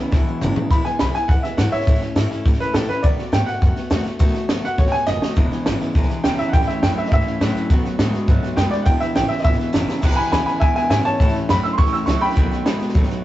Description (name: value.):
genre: rockabilly.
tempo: 206 BPM.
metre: 4/4.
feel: straight.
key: E major.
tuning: A4 = 439 Hz.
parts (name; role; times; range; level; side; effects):
clear upright piano; melody; 0.0-13.1 s; E4 to E6; -22 LUFS; right 1 dB; none.
picked steel-string acoustic guitar; accompaniment; 0.0-13.2 s; E2 to F#4; -27 LUFS; left 2 dB; none.
electric guitar through a small old amp; riff; 0.0-0.7, 5.4-13.2 s; E2 to G#3; -24 LUFS; equal; none.
upright bass; bass; 0.1-13.1 s; E1 to B2; -24 LUFS; equal; none.
compact cocktail drum kit; drums; 0.1-13.1 s; crash cymbal, hi-hat, kick drum, snare drum, toms; -19 LUFS; equal; none.
room: moderate stone room reverb, RT60 1.4 s.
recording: rough rehearsal-room recording, nothing above 7.9 kHz.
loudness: -16 LUFS.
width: side -14 dB against mid.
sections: 0.7-10.0 A section; 10.0-13.2 A section.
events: drum fill 0.1-0.7, 5.1, 9.9; upright piano solo 0.7-13.2.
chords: 0.0 E; 1.9 A; 3.0 B7; 5.4 E; 6.5 A; 7.7 B7; 8.9 E; 11.2 A; 12.4 B7.